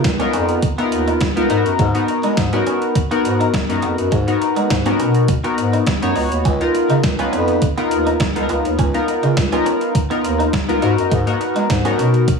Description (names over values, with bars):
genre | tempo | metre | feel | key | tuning
early-eighties boogie funk | 103 BPM | 4/4 | straight | G# dorian | A4 = 439 Hz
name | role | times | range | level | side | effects
chorused polysynth | accompaniment | 0.0-12.3 s | A#3 to C#5 | -18 LUFS | left 2 dB | none
clean electric guitar | riff | 0.0-12.1 s | G#3 to D#4 | -27 LUFS | right 3 dB | analog chorus
breathy bass clarinet | bass | 0.0-12.3 s | C#2 to G#3 | -20 LUFS | equal | none
crisp 8-bit digital drum machine | drums | 0.0-12.4 s | hi-hat, kick drum, snare drum | -20 LUFS | right 1 dB | overdrive, gated reverb
room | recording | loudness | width
light reverb | studio ambience | -15 LUFS | side -5 dB against mid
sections
0.0-12.4 A section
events
none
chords
0.0 C#13; 1.5 G#m9; 6.5 C#13; 10.8 G#m9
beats
0.05 0.63 1.21 | 1.79 2.38 2.96 3.54 | 4.12 4.71 5.29 5.87 | 6.45 7.04 7.62 8.20 | 8.78 9.37 9.95 10.53 | 11.11 11.70 12.28